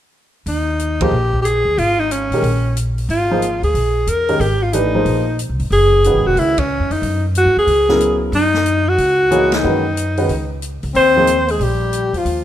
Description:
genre	modal jazz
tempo	183 BPM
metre	4/4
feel	swing 64% on 8ths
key	unclear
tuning	A4 = 440 Hz
part	warm alto saxophone	melody	0.5-12.4 s	Db4 to C5	-16 LUFS	equal	none
part	upright bass	bass	0.5-12.4 s	Fb1 to Bb2	-20 LUFS	equal	none
part	open jazz drum kit	drums	0.5-12.4 s	hi-hat, kick drum, ride cymbal, snare drum	-29 LUFS	equal	none
part	dark baby grand piano	accompaniment	1.0-11.3 s	Db3 to Db5	-20 LUFS	equal	none
part	clear trombone	second line	10.9-12.4 s	F3 to C4	-20 LUFS	left 5 dB	none
room	light reverb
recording	minimal, uncompressed stereo recording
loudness	-14 LUFS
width	side -11 dB against mid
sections	0.5-12.4 A section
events	band accent 1.0, 6.5, 9.5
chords	0.5 Ebsus4; 5.7 Gb13sus4; 11.0 Ebsus2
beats	| 0.47 0.80 1.12 1.45 | 1.78 2.11 2.44 2.77 | 3.09 3.42 3.75 4.08 | 4.41 4.73 5.06 5.39 | 5.72 6.04 6.37 6.70 | 7.03 7.35 7.68 8.01 | 8.34 8.66 8.99 9.32 | 9.64 9.97 10.30 10.62 | 10.95 11.28 11.61 11.93 | 12.26

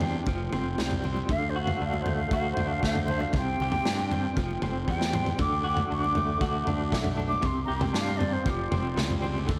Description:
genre	psychedelic rock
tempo	117 BPM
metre	4/4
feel	straight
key	unclear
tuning	A4 = 440 Hz
part	mellow jazz flute	melody	0.0-8.7 s	G4 to D6	-34 LUFS	equal	diffuse ambient delay
part	electric guitar through a small old amp	riff	0.0-9.6 s	C3 to G4	-34 LUFS	equal	tremolo
part	fuzz fingered electric bass	bass	0.0-9.6 s	F1 to G2	-34 LUFS	equal	overdrive
part	crunchy breakbeat drum kit	drums	0.0-9.6 s	kick drum, snare drum, toms	-33 LUFS	equal	none
part	congas	percussion	0.0-9.5 s	none	-43 LUFS	equal	none
room	moderate huge ambient reverb, RT60 4.0 s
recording	dreamy mix soaked in reverb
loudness	-28 LUFS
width	mono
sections	0.0-9.6 A section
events	flute solo 0.0-9.6; drum fill 4.9-5.4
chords	0.3 Fsus2; 1.3 D; 3.3 Csus2; 4.4 Fsus2; 5.4 D; 7.4 Csus2; 8.5 Fsus2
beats	0.27 0.78 | 1.29 1.80 2.32 2.83 | 3.34 3.86 4.37 4.88 | 5.39 5.91 6.42 6.93 | 7.44 7.96 8.47 8.98 | 9.49

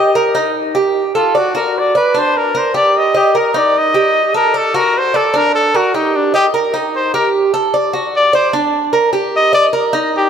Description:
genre	latin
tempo	150 BPM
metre	4/4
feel	straight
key	unclear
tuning	A4 = 441 Hz
part	clear trumpet	melody	0.0-10.3 s	D4 to Eb5	-14 LUFS	left 2 dB	none
part	Cuban tres	arpeggios	0.0-10.3 s	D4 to Eb5	-14 LUFS	right 2 dB	none
room	wet plate reverb, RT60 3.5 s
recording	heard from further back in the room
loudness	-11 LUFS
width	side -8 dB against mid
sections	0.0-10.3 A section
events	trumpet solo 0.0-10.3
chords	0.0 Eb; 1.4 D; 2.1 Gm; 2.9 Ebmaj7; 3.7 Eb; 4.5 D; 5.3 Gm; 6.1 Ebmaj7/D; 6.9 Eb; 7.7 D; 8.5 Gm; 9.3 Eb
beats	0.15 | 0.55 0.95 1.35 1.75 | 2.15 2.55 2.95 3.35 | 3.75 4.14 4.54 4.94 | 5.34 5.74 6.14 6.54 | 6.94 7.34 7.74 8.13 | 8.53 8.93 9.33 9.73 | 10.13

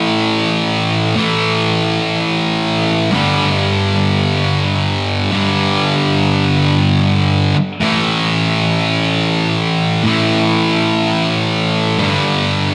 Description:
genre	rock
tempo	free time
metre	none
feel	none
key	unclear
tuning	A4 = 440 Hz
part	thick fuzz guitar	solo	0.0-12.7 s	G2 to A3	-15 LUFS	equal	distortion
room	wet lush hall reverb, RT60 1.9 s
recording	big arena sound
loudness	-15 LUFS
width	mono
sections	0.0-12.7 A section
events	none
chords	0.0 A5; 3.1 G5; 7.8 A5; 12.0 G5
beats	free time

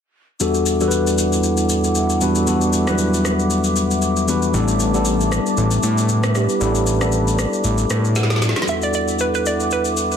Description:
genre	amapiano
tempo	116 BPM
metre	4/4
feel	swing 55% on 16ths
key	E minor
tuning	A4 = 439 Hz
part	tine electric piano	accompaniment	0.4-10.2 s	E2 to F#5	-19 LUFS	left 1 dB	phaser
part	mellow hollow large flute ensemble	sustained chords	0.4-10.2 s	E4 to D6	-25 LUFS	right 1 dB	none
part	electronic shaker, rim click and snare drum	drums	0.4-10.2 s	none	-24 LUFS	left 1 dB	overdrive
part	fat analog bass	bass	4.5-8.5 s	A1 to A2	-19 LUFS	equal	none
part	hollow square pluck	melody	8.7-10.2 s	B4 to E5	-22 LUFS	right 4 dB	chorus, tape echo
room	light reverb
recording	dense, heavily limited modern master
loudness	-16 LUFS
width	side -8 dB against mid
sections	0.4-8.7 A section; 8.7-10.2 B section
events	drum fill 8.2-8.7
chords	0.4 Em11; 4.5 A9sus4; 8.7 Em11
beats	| 0.40 0.92 1.44 1.95 | 2.47 2.99 3.51 4.02 | 4.54 5.06 5.58 6.09 | 6.61 7.13 7.64 8.16 | 8.68 9.20 9.71

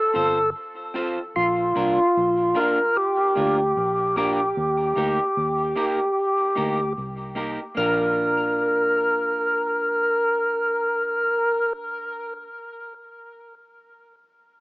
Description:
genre	roots reggae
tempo	75 BPM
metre	4/4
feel	swing 59% on 16ths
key	Bb major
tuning	A4 = 440 Hz
part	percussive tonewheel organ	melody	0.0-11.7 s	F4 to Bb4	-21 LUFS	equal	overdrive, slow rotary speaker, tape echo
part	clean electric guitar	accompaniment	0.1-12.5 s	Bb3 to C5	-30 LUFS	right 1 dB	tape echo
part	vintage muted fingered electric bass	bass	0.2-12.4 s	G1 to Eb2	-32 LUFS	equal	none
room	light reverb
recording	rough home demo mix, small speaker sound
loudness	-20 LUFS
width	side -22 dB against mid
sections	0.0-1.3 A section; 1.3-7.8 B section; 7.8-11.0 C section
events	break 0.5-1.3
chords	0.0 F; 1.3 Bb; 4.6 Eb; 7.8 Bb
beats	0.55 | 1.35 2.15 2.95 3.75 | 4.56 5.36 6.16 6.96 | 7.76 8.56 9.36 10.16

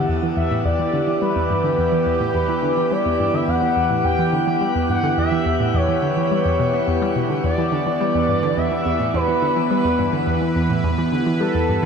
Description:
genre	ambient, sequencer-driven space music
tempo	106 BPM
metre	4/4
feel	straight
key	E dorian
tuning	A4 = 440 Hz
part	expressive synth lead	melody	0.0-11.9 s	A4 to G5	-22 LUFS	left 1 dB	lush chorus, cassette tape, ping-pong delay
part	sweeping resonant pad	sustained chords	0.0-11.9 s	E3 to B4	-21 LUFS	right 1 dB	chorus, phaser
part	pulsing gated texture	texture	3.8-11.9 s	G4	-41 LUFS	right 6 dB	none
part	hollow square pluck	riff	0.1-11.9 s	E2 to B3	-22 LUFS	equal	chorus, phaser, ping-pong delay
room	wet shimmer reverb, RT60 9.1 s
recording	none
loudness	-17 LUFS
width	side -6 dB against mid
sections	0.0-11.9 A section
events	none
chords	0.0 Em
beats	0.09 | 0.65 1.22 1.79 2.35 | 2.92 3.48 4.05 4.62 | 5.18 5.75 6.32 6.88 | 7.45 8.01 8.58 9.14 | 9.71 10.28 10.84 11.41

